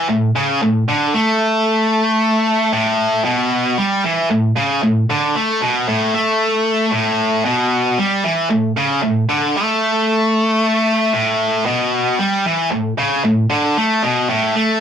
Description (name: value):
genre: rock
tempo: 114 BPM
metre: 4/4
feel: straight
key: A major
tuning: A4 = 440 Hz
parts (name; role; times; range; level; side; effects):
- tight distorted guitar; solo; 0.0-14.8 s; A2 to A3; -14 LUFS; equal; distortion
room: moderate small room reverb, RT60 0.5 s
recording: rough rehearsal-room recording, tube saturation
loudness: -14 LUFS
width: side -8 dB against mid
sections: 0.0-6.9 A section; 6.9-14.8 A section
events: none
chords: none